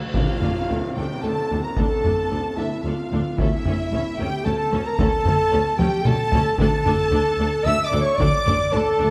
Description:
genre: cinematic, epic orchestral film score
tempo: 112 BPM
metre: 3/4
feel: straight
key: D harmonic minor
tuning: A4 = 439 Hz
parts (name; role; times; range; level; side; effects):
- rich studio violin section; melody; 0.0-9.1 s; A4 to E6; -36 LUFS; equal; none
- timpani; percussion; 0.0-0.9, 3.4-4.1, 6.6-7.4 s; D3; -36 LUFS; equal; none
- mellow French horn section; sustained chords; 0.1-9.1 s; E4 to E5; -26 LUFS; equal; none
- warm symphonic double bass section; bass; 0.1-9.1 s; D2; -30 LUFS; equal; none
- solo taiko drums; drums; 0.1-8.7 s; none; -26 LUFS; equal; none
- clear symphonic violin section; second line; 0.2-9.1 s; E5 to E6; -34 LUFS; equal; none
- mellow hollow concert flute; second line; 0.2-9.1 s; E5 to E6; -32 LUFS; equal; none
- warm symphonic viola section; accompaniment; 0.2-9.1 s; C#4 to A4; -34 LUFS; equal; none
- dark symphonic cello section; bass; 0.2-9.1 s; D2; -30 LUFS; equal; none
- tam-tam; percussion; 0.2-2.3 s; none; -36 LUFS; equal; none
room: moderate scoring stage reverb, RT60 1.6 s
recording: none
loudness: -21 LUFS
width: mono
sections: 0.2-9.1 A section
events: timpani fill 0.0; band accent 0.2-0.7; drum fill 5.8-6.6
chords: 0.2 Dm; 3.4 A/D; 6.6 D5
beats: | 0.15 0.69 1.24 | 1.77 2.31 2.85 | 3.38 3.92 4.46 | 4.99 5.53 6.06 | 6.59 7.13 7.67 | 8.20 8.74

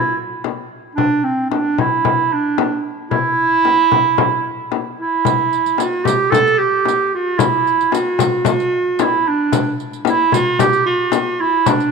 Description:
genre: Arabic maqam ensemble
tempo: 112 BPM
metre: 4/4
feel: straight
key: E maqam bayati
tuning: A4 = 440 Hz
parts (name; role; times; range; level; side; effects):
- warm clarinet; melody; 0.0-11.9 s; C4 to A4; -15 LUFS; right 4 dB; tape echo
- frame drum; percussion; 0.4-11.8 s; none; -20 LUFS; left 11 dB; none
- riq; percussion; 5.3-11.9 s; none; -29 LUFS; right 11 dB; none
room: wet echo chamber reverb, RT60 2.2 s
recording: 1960s-style stereo with parts hard left and right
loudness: -14 LUFS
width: side -4 dB against mid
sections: 0.0-5.3 A section; 5.3-11.9 B section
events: none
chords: none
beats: 0.44 | 0.98 1.51 2.05 2.58 | 3.12 3.65 4.19 4.72 | 5.26 5.79 6.33 6.86 | 7.40 7.93 8.46 9.00 | 9.53 10.06 10.60 11.13 | 11.66

